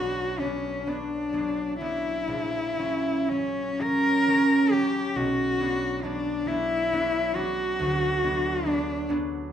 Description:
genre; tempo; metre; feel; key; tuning
classical, romantic duo for cello and harp; 38-47 BPM (dotted quarters); 6/8; rubato; B minor; A4 = 440 Hz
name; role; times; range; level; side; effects
rich cello; melody; 0.0-9.1 s; C#4 to A#4; -26 LUFS; left 2 dB; none
concert harp; accompaniment; 0.0-9.5 s; A#1 to D4; -27 LUFS; right 1 dB; none
room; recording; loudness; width
wet recital hall reverb, RT60 1.3 s; minimal, uncompressed stereo recording; -24 LUFS; side -9 dB against mid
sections
0.0-9.5 A section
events
none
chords
0.0 Bm; 2.3 F#7/A#; 5.2 Bm; 7.8 Bm/D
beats
0.87 | 2.28 3.81 | 5.16 6.47 | 7.79 9.09

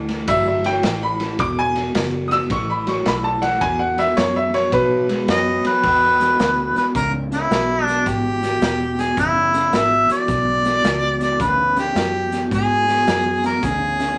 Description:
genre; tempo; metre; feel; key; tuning
electric blues shuffle; 108 BPM; 4/4; swing 66% on 8ths; E mixolydian; A4 = 441 Hz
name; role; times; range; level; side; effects
electric guitar through a small old amp; riff; 0.0-14.2 s; E2 to G#3; -26 LUFS; equal; harmonic tremolo
vintage muted fingered electric bass; bass; 0.0-14.2 s; E1 to B2; -30 LUFS; equal; none
raw garage drum kit; drums; 0.1-14.1 s; crash cymbal, hi-hat, kick drum, ride cymbal, snare drum; -28 LUFS; equal; none
bright upright piano; second line; 0.3-5.8 s; B4 to E6; -22 LUFS; equal; none
mellow harmonica; melody; 5.3-14.2 s; E4 to E5; -20 LUFS; equal; none
room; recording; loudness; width
wet studio reverb, RT60 0.5 s; none; -19 LUFS; mono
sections
0.0-5.8 A section; 5.8-14.2 B section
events
upright piano solo 0.0-5.8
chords
0.0 A5; 1.4 Esus2; 2.5 Asus2; 3.6 Esus2; 4.7 B5; 5.8 E9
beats
0.28 0.84 | 1.40 1.95 2.51 3.06 | 3.62 4.17 4.73 5.28 | 5.84 6.39 6.95 7.51 | 8.06 8.62 9.18 9.73 | 10.29 10.85 11.40 11.96 | 12.51 13.07 13.63

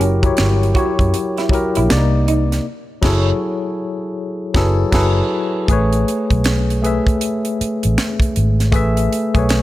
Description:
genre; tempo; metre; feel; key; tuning
R&B, neo-soul; 79 BPM; 4/4; swing 63% on 16ths; unclear; A4 = 442 Hz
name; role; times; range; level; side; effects
electric guitar through a small old amp; second line; 0.0-2.4 s; C#4 to F#4; -24 LUFS; right 6 dB; none
tine electric piano; accompaniment; 0.0-9.6 s; C3 to E5; -18 LUFS; left 2 dB; medium stereo tremolo
vintage muted fingered electric bass; bass; 0.0-9.6 s; F#1 to F#2; -17 LUFS; equal; none
tight funk drum kit; drums; 0.0-9.6 s; crash cymbal, finger snaps, hi-hat, kick drum, snare drum; -19 LUFS; right 1 dB; none
room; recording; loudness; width
light reverb; none; -14 LUFS; side -15 dB against mid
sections
0.0-5.7 A section; 5.7-9.6 B section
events
band accent 2.6-5.7; drums muted 4.9-5.7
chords
0.0 F#7b9; 1.9 Cm9; 2.6 F#m11; 5.7 Amaj9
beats
0.37 1.13 1.89 | 2.65 3.41 4.17 4.92 | 5.68 6.44 7.20 7.96 | 8.72 9.48

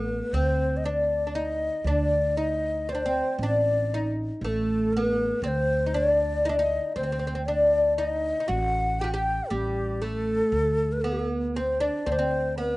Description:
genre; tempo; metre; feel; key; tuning
Turkish makam ensemble; 118 BPM (eighths); 10/8; straight; D makam hicaz; A4 = 440 Hz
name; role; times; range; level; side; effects
oud; melody; 0.0-12.8 s; G3 to G4; -26 LUFS; equal; slapback echo
breathy ney; second line; 0.0-12.8 s; G4 to G5; -28 LUFS; left 1 dB; slapback echo
upright bass; bass; 0.0-12.8 s; A1 to D2; -30 LUFS; right 1 dB; none
room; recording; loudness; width
little or no reverb; recorded outdoors, with no room sound, nothing above 10.4 kHz; -23 LUFS; side -19 dB against mid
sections
0.0-12.8 A section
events
none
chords
none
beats
| 0.32 0.83 1.34 1.85 2.36 2.87 3.38 3.89 4.40 4.91 | 5.42 5.93 6.44 6.95 7.46 7.97 8.48 8.99 9.51 10.02 | 10.53 11.04 11.55 12.06 12.57

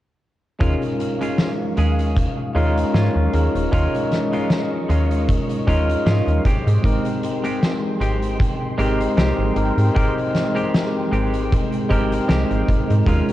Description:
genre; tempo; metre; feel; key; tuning
vaporwave; 77 BPM; 4/4; swing 55% on 16ths; Ab major; A4 = 440 Hz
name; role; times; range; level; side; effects
overdriven tine electric piano; accompaniment; 0.6-13.3 s; Ab3 to Bb4; -22 LUFS; left 1 dB; wide subtle chorus, vintage 12-bit sampler grit, analog delay
soft string machine; sustained chords; 0.6-13.3 s; Ab3 to Db6; -28 LUFS; right 1 dB; phaser, ensemble chorus
semi-hollow electric guitar; riff; 0.6-13.3 s; Ab3 to Ab4; -29 LUFS; right 1 dB; lush chorus, vintage 12-bit sampler grit, analog delay
slap-like FM bass; bass; 0.6-13.2 s; Eb1 to Ab2; -20 LUFS; equal; tube saturation
kick drum; drums; 0.6-13.2 s; none; -22 LUFS; equal; none
oversized low-tuned drum kit; drums; 0.6-13.3 s; hi-hat, snare drum; -27 LUFS; equal; none
room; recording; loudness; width
moderate plate reverb, RT60 2.9 s; dreamy mix soaked in reverb, cassette tape; -17 LUFS; side -14 dB against mid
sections
0.6-13.3 A section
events
none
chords
0.6 Eb9sus4; 6.5 Abmaj7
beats
| 0.61 1.39 2.17 2.95 | 3.73 4.51 5.29 6.07 | 6.84 7.62 8.40 9.18 | 9.96 10.74 11.52 12.30 | 13.08

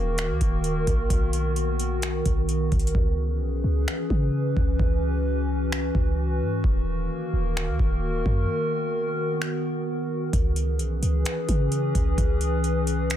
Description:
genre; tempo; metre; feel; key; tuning
hip hop, atmospheric cloud-rap; 130 BPM; 4/4; half-time; C# dorian; A4 = 440 Hz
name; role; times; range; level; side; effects
warbly tape-like pad; sustained chords; 0.0-13.2 s; D#3 to B4; -27 LUFS; left 1 dB; chorus, built-in reverb, sidechain pumping
clean 808-style bass; bass; 0.0-13.2 s; D#1 to C#3; -25 LUFS; equal; none
booming analog drum machine; drums; 0.2-13.2 s; finger snaps, hi-hat, kick drum; -25 LUFS; equal; overdrive
room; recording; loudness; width
little or no reverb; none; -22 LUFS; side -11 dB against mid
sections
0.0-13.2 A section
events
hi-hats muted 2.9-10.3; kick muted 8.5-10.3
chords
0.0 D#m; 1.1 Bmaj7; 2.9 C#m7; 6.6 D#m; 8.5 Bmaj7; 10.3 C#m7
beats
0.18 0.64 | 1.10 1.56 2.02 2.49 | 2.95 3.41 3.87 4.33 | 4.79 5.26 5.72 6.18 | 6.64 7.10 7.56 8.03 | 8.49 8.95 9.41 9.87 | 10.33 10.79 11.26 11.72 | 12.18 12.64 13.10

